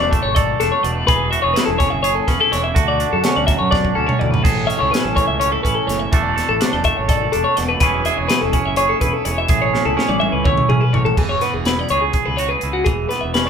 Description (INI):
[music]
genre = math rock and midwest emo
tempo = 249 BPM (eighths)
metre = 7/8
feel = straight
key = unclear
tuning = A4 = 440 Hz
[part]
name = twangy electric guitar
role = accompaniment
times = 0.0-13.5 s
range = A2 to A4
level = -22 LUFS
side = right 6 dB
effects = spring reverb
[part]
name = twelve-string electric guitar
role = arpeggios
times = 0.0-13.5 s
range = F#4 to E5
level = -19 LUFS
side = left 3 dB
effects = none
[part]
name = fuzz fingered electric bass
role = bass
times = 0.0-13.5 s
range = E1 to F#2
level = -24 LUFS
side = right 1 dB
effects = overdrive
[part]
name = crisp fusion drum kit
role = drums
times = 0.1-13.5 s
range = crash cymbal, hi-hat, kick drum, snare drum, toms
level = -20 LUFS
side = equal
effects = none
[sound]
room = light reverb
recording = band playing live in one room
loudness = -15 LUFS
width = side -7 dB against mid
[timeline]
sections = 0.0-11.2 A section; 11.2-13.5 B section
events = drum fill 3.7-4.4, 9.7-11.2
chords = 0.0 E7sus4; 1.1 C#m7/E; 2.8 Dmaj7; 4.4 Amaj7; 6.1 E7sus4; 7.8 C#m7/E; 9.5 Amaj7; 11.2 E